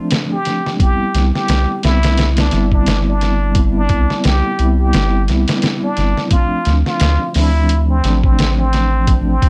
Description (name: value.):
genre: trip hop.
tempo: 87 BPM.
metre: 4/4.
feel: swing 57% on 16ths.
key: unclear.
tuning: A4 = 439 Hz.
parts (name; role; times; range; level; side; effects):
mellow tine electric piano; accompaniment; 0.0-9.5 s; F3 to E4; -22 LUFS; equal; tremolo, tape echo.
trip hop sampler-style drum kit; drums; 0.1-9.5 s; hi-hat, kick drum, snare drum; -20 LUFS; equal; none.
trumpet with plunger mute; melody; 0.3-9.5 s; C4 to G4; -24 LUFS; equal; dub echo.
round analog bass; bass; 1.1-9.5 s; G1 to D2; -18 LUFS; equal; none.
room: little or no reverb.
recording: none.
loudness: -15 LUFS.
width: mono.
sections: 0.0-9.5 A section.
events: none.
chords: 0.0 Dm7; 0.8 Cmaj7; 6.3 Dm7.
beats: 0.11 | 0.80 1.49 2.18 2.87 | 3.56 4.25 4.93 5.62 | 6.31 7.00 7.69 8.38 | 9.07.